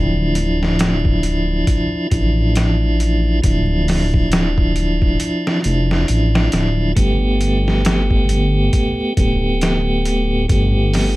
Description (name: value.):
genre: trip hop.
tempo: 68 BPM.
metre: 4/4.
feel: swing 59% on 16ths.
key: D dorian.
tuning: A4 = 442 Hz.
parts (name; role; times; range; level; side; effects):
tonewheel organ; accompaniment; 0.0-11.2 s; F3 to G4; -19 LUFS; right 1 dB; overdrive, stopped rotary speaker, tremolo, tape echo.
dark detuned saw bass; bass; 0.0-11.2 s; D1 to A1; -17 LUFS; equal; none.
trip hop sampler-style drum kit; drums; 0.4-11.2 s; hi-hat, kick drum, snare drum; -19 LUFS; equal; small room ambience.
room: digital ambience.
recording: vinyl crackle.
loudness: -14 LUFS.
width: side -19 dB against mid.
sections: 0.0-11.2 A section.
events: none.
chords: 0.0 Dmadd9; 7.0 Gadd9.